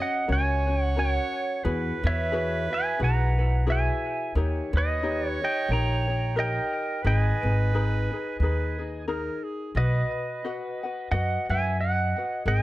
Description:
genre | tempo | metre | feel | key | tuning
Hawaiian | 89 BPM | 4/4 | swing 57% on 8ths | G# minor | A4 = 440 Hz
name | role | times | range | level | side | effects
pedal steel guitar | melody | 0.0-12.6 s | B4 to A#5 | -28 LUFS | right 2 dB | tape echo
clear clarinet | second line | 0.0-9.7 s | G#4 to D#5 | -33 LUFS | right 4 dB | none
ukulele | accompaniment | 0.0-12.6 s | C#4 to F#5 | -33 LUFS | left 4 dB | none
upright bass | bass | 0.3-12.6 s | G#1 to F#2 | -25 LUFS | equal | none
room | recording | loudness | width
light reverb | dark, warm production | -24 LUFS | side -16 dB against mid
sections
0.0-9.8 A section; 9.8-12.6 B section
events
none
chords
0.0 F#; 1.6 Eadd9; 4.4 D#7; 7.1 G#madd9; 9.8 B

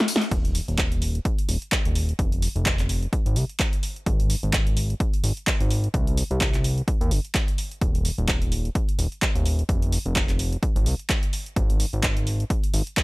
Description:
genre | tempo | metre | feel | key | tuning
piano house | 128 BPM | 4/4 | swing 57% on 16ths | unclear | A4 = 440 Hz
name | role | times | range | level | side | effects
punchy analog drum machine | drums | 0.0-13.0 s | handclaps, hi-hat, ride cymbal, snare drum, tambourine | -27 LUFS | equal | overdrive
fat analog bass | bass | 0.3-12.8 s | Eb1 to Eb2 | -24 LUFS | equal | sidechain pumping
electronic kick drum | drums | 0.3-13.0 s | none | -24 LUFS | equal | overdrive
room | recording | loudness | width
little or no reverb | none | -21 LUFS | side -22 dB against mid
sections
0.3-13.0 A section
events
break 0.0-0.3; drum fill 0.0-0.3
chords
none

